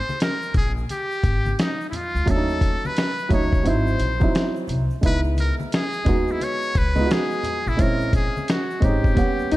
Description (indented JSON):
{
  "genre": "hip hop, jazz-hop",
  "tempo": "87 BPM",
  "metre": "4/4",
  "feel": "swing 63% on 16ths",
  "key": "unclear",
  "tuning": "A4 = 439 Hz",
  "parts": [
    { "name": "trumpet with metal mute", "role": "melody", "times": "0.0-9.6 s", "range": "D#4 to C#5", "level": "-27 LUFS", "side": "left 1 dB", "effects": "slapback echo" },
    { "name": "congas and egg shaker", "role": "percussion", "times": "0.1-9.6 s", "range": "none", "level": "-35 LUFS", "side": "left 2 dB", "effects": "none" },
    { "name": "dusty soul sampler-style drum kit", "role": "drums", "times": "0.2-9.6 s", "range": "hi-hat, kick drum, snare drum", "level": "-22 LUFS", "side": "equal", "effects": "none" },
    { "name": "upright bass", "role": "bass", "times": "0.5-9.6 s", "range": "G#1 to E2", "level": "-24 LUFS", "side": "equal", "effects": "none" },
    { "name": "dark grand piano", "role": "accompaniment", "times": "2.3-9.6 s", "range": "F#3 to F#5", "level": "-24 LUFS", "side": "right 2 dB", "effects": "none" },
    { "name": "mellow electric guitar", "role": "second line", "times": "9.5-9.6 s", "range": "D#4", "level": "-17 LUFS", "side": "left 3 dB", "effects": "harmonic tremolo" }
  ],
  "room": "light reverb, small room ambience",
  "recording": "dark, warm production",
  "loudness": "-19 LUFS",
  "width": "side -17 dB against mid",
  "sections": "0.0-9.6 A section",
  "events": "break 0.0-2.3",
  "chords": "0.0 G#sus2; 2.3 D#m7b5; 3.7 G#7b13; 5.0 C#m9; 7.8 A#m7b5"
}